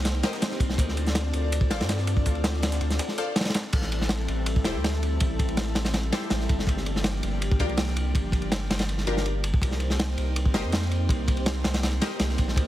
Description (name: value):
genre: drum and bass, jungle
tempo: 163 BPM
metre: 4/4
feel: straight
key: A phrygian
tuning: A4 = 441 Hz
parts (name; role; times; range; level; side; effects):
- airy breathy pad; sustained chords; 0.0-12.7 s; F3 to D5; -33 LUFS; left 1 dB; chorus
- saturated sub bass; bass; 0.0-12.7 s; E1 to G2; -28 LUFS; equal; none
- crunchy breakbeat drum kit; drums; 0.0-12.7 s; crash cymbal, kick drum, ride cymbal, snare drum; -26 LUFS; equal; none
- breakbeat sampler-style drum kit; drums; 0.1-3.6 s; hi-hat, snare drum; -39 LUFS; right 2 dB; high-pass filter on snare, high-pass filter on hats
- orchestra-hit-like synth stab; stabs; 0.2-12.1 s; D4 to F5; -35 LUFS; left 3 dB; built-in reverb, dub echo
room: small room ambience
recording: heavily compressed radio sound, multiband compression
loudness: -23 LUFS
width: side -14 dB against mid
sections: 0.0-3.7 A section; 3.7-12.7 A section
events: drop 0.0-3.7, 3.7-12.7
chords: 0.0 Cm7; 0.8 Dm7; 3.7 Am7; 6.7 Gm7; 9.6 Cm7